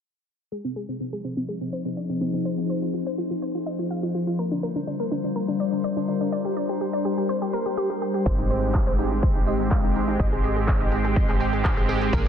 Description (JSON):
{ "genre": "progressive house", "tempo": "124 BPM", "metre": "4/4", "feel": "straight", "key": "F dorian", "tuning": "A4 = 440 Hz", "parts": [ { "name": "evolving wavetable pad", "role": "sustained chords", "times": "1.2-12.3 s", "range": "F3 to Bb4", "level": "-28 LUFS", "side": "left 3 dB", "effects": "phaser, built-in reverb, sidechain pumping" }, { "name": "wide unison pluck", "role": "arpeggios", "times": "0.5-12.3 s", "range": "C4 to Ab5", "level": "-29 LUFS", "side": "equal", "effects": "sidechain pumping, ping-pong delay" }, { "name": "big-room dance drum kit", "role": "drums", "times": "0.5-12.3 s", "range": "handclaps, hi-hat", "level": "-34 LUFS", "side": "right 1 dB", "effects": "overdrive, sidechain pumping on hats" }, { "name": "drifting glass-harmonics texture", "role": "texture", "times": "1.6-12.3 s", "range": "C5 to C6", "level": "-37 LUFS", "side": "left 6 dB", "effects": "chorus, built-in reverb, sidechain pumping" }, { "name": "soft supersaw", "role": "stabs", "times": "8.3-12.3 s", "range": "Ab2 to Ab4", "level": "-26 LUFS", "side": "right 4 dB", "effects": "sidechain pumping, ping-pong delay" }, { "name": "tight sequencer bass", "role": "bass", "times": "8.3-12.3 s", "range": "Ab1 to Bb1", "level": "-28 LUFS", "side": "equal", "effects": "tube saturation, sidechain pumping" }, { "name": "electronic kick drum", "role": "drums", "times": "8.3-12.2 s", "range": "none", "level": "-23 LUFS", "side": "equal", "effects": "overdrive" }, { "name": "tambourine", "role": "percussion", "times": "8.3-12.3 s", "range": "none", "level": "-49 LUFS", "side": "right 3 dB", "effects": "none" } ], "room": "light reverb", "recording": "dense, heavily limited modern master, low-pass filter", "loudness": "-22 LUFS", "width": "side -8 dB against mid", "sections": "0.5-12.3 A section", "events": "filter sweep on synth pluck 0.5-12.3; filter sweep on ambient pad 0.5-12.3; filter sweep 0.5-12.3", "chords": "0.5 Fm7; 4.4 Gm7; 8.3 Abmaj7" }